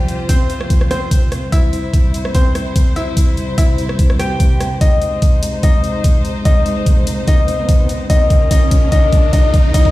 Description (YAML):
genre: heavy wobble dubstep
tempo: 146 BPM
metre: 4/4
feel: swing 53% on 16ths, half-time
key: unclear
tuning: A4 = 435 Hz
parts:
  - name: bright baby grand piano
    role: melody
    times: 0.0-9.9 s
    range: G3 to G5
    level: -20 LUFS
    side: left 2 dB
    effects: ping-pong delay
  - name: dark studio string section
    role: sustained chords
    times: 0.0-9.9 s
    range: C3 to C5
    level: -22 LUFS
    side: equal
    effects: sidechain pumping
  - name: dubstep drum kit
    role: drums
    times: 0.1-9.8 s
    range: hi-hat, rim click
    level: -27 LUFS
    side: equal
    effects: overdrive, studio reverb
  - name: electronic kick drum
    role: drums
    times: 0.3-9.9 s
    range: none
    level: -12 LUFS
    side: equal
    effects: overdrive, studio reverb
  - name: riser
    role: sound effects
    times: 6.3-9.9 s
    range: none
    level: -26 LUFS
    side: equal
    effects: none
room: digital ambience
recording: played on a big sound system in a bare room, large studio reverb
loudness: -12 LUFS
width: side -17 dB against mid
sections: 0.0-9.9 A section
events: build-up 0.0-9.9; drum fill 4.8-9.9; riser 6.3-9.9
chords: 0.0 F5; 1.5 C; 4.8 Ab; 8.1 Bbm